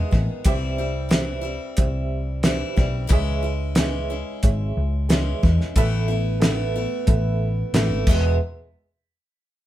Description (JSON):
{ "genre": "folk rock and heartland rock", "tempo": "91 BPM", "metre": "4/4", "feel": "straight", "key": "unclear", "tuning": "A4 = 442 Hz", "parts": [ { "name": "picked acoustic archtop guitar", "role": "accompaniment", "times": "0.0-8.4 s", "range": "E2 to G#4", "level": "-29 LUFS", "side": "equal", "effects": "none" }, { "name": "reed electric piano", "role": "accompaniment", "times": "0.0-8.4 s", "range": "G4 to E5", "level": "-31 LUFS", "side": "right 4 dB", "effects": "tremolo" }, { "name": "hollow-body short-scale picked electric bass", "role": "bass", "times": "0.1-8.4 s", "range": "E1 to E2", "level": "-23 LUFS", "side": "equal", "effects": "none" }, { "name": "cloth-damped thuddy drum kit", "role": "drums", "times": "0.1-8.2 s", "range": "crash cymbal, hi-hat, kick drum, snare drum", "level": "-20 LUFS", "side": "equal", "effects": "none" } ], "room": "moderate studio reverb, RT60 0.7 s", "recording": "band playing live in one room", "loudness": "-19 LUFS", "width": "side -13 dB against mid", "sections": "0.0-8.4 A section; 8.4-9.7 B section", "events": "drum fill 8.1-8.4", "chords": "0.5 C; 3.1 C#m; 5.8 Asus2; 8.1 Emaj7; 8.4 N.C." }